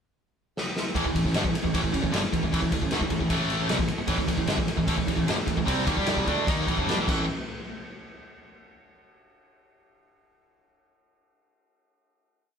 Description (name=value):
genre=hard rock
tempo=152 BPM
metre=4/4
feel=straight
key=unclear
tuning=A4 = 440 Hz
part: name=raw garage drum kit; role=drums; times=0.6-7.2 s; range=crash cymbal, kick drum, ride cymbal, snare drum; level=-28 LUFS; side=equal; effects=none
part: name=fuzz picked electric bass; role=bass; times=0.9-7.3 s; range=G1 to G2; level=-31 LUFS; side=equal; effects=overdrive
part: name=distorted electric guitar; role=riff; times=1.0-7.2 s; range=G2 to G4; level=-27 LUFS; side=right 1 dB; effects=overdrive
room=moderate stone room reverb, RT60 1.2 s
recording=band playing live in one room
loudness=-23 LUFS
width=side -7 dB against mid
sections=0.0-0.9 pickup bar; 0.9-7.3 riff; 7.3-8.9 final hit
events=drum fill 0.6-0.9, 7.1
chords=0.0 N.C.; 0.9 A5; 7.3 N.C.